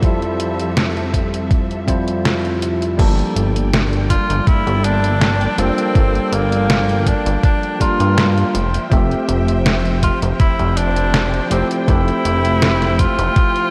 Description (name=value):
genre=vaporwave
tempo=81 BPM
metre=4/4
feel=straight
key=G dorian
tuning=A4 = 441 Hz
part: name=bell-like tine electric piano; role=accompaniment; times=0.0-13.7 s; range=F2 to E5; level=-23 LUFS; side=equal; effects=lush chorus, diffuse ambient delay
part: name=rich studio string section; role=sustained chords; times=0.0-13.7 s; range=F2 to G5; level=-29 LUFS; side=equal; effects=vintage 12-bit sampler grit
part: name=detuned 8-bit digital drum machine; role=drums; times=0.0-13.7 s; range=crash cymbal, hi-hat, snare drum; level=-24 LUFS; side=equal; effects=none
part: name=electronic kick drum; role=drums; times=0.0-13.5 s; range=none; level=-18 LUFS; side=equal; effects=none
part: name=chorused synth bass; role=bass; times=3.0-13.3 s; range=F1 to G2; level=-21 LUFS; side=equal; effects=none
part: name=bright tenor saxophone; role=melody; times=4.1-13.7 s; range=Bb3 to F4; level=-23 LUFS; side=equal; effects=diffuse ambient delay
room=moderate lush hall reverb, RT60 2.9 s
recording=dreamy mix soaked in reverb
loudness=-16 LUFS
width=mono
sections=0.0-3.0 A section; 3.0-13.7 B section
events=none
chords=0.0 Fmaj9; 3.0 Gm7; 8.5 Dm11/F (rootless)